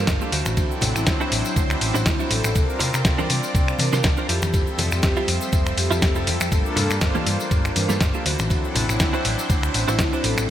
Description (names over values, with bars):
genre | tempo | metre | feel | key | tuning
nu-disco, nu disco | 121 BPM | 4/4 | swing 55% on 16ths | unclear | A4 = 440 Hz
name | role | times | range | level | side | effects
vibraphone with soft mallets | melody | 0.0-10.5 s | E4 to Bb4 | -32 LUFS | equal | ping-pong delay
warm analog pad | accompaniment | 0.0-10.5 s | F3 to E5 | -27 LUFS | left 1 dB | chorus, ping-pong delay
string machine, full ensemble | sustained chords | 0.0-10.5 s | A4 to E6 | -34 LUFS | equal | none
direct-recorded clean electric guitar | riff | 0.0-10.4 s | Bb3 to C5 | -29 LUFS | right 4 dB | analog chorus
picked electric bass | bass | 0.0-10.5 s | F1 to C3 | -25 LUFS | equal | none
dusty soul sampler-style drum kit | drums | 0.1-10.5 s | finger snaps, hi-hat, ride cymbal, snare drum, tambourine | -24 LUFS | equal | none
electronic kick drum | drums | 0.1-10.1 s | none | -22 LUFS | equal | none
cabasa and congas | percussion | 0.1-10.5 s | none | -32 LUFS | left 3 dB | none
room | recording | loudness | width
light reverb, digital ambience | bright 1980s-style digital production | -18 LUFS | side -11 dB against mid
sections
0.0-10.5 A section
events
none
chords
0.3 D9; 2.6 C9sus4; 4.3 Fmaj9; 6.5 Gm9; 8.3 D9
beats
0.07 | 0.57 1.07 1.56 2.06 | 2.55 3.05 3.54 4.04 | 4.54 5.03 5.53 6.02 | 6.52 7.02 7.51 8.01 | 8.50 9.00 9.50 9.99 | 10.49